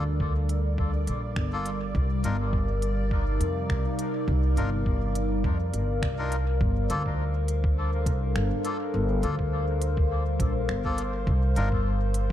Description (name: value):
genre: ambient dub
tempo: 103 BPM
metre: 4/4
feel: swing 55% on 16ths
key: G minor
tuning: A4 = 441 Hz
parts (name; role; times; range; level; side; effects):
- warbly tape-like pad; sustained chords; 0.0-12.3 s; C3 to F5; -31 LUFS; left 2 dB; chorus, built-in reverb, phaser
- melodica; stabs; 0.0-11.7 s; Bb3 to Bb4; -36 LUFS; left 3 dB; dub echo
- upright bass; bass; 0.0-12.3 s; G1 to F2; -26 LUFS; equal; none
- bubbling stepped-filter texture; texture; 0.0-12.3 s; C5 to D5; -40 LUFS; right 2 dB; chorus, built-in reverb
- electronic kick drum; drums; 0.2-12.3 s; none; -28 LUFS; equal; none
- organic electronic drum kit; drums; 0.5-12.3 s; finger snaps, hi-hat; -39 LUFS; right 1 dB; dub echo
room: digital ambience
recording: dark, warm production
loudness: -24 LUFS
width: side -12 dB against mid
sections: 0.0-6.6 A section; 6.6-12.3 B section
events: none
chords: 0.0 Gm7; 1.9 Cm11; 6.6 Gm7; 11.3 Cm11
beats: 0.20 0.78 1.36 | 1.95 2.53 3.11 3.69 | 4.28 4.86 5.44 6.03 | 6.61 7.19 7.77 8.36 | 8.94 9.52 10.10 10.69 | 11.27 11.85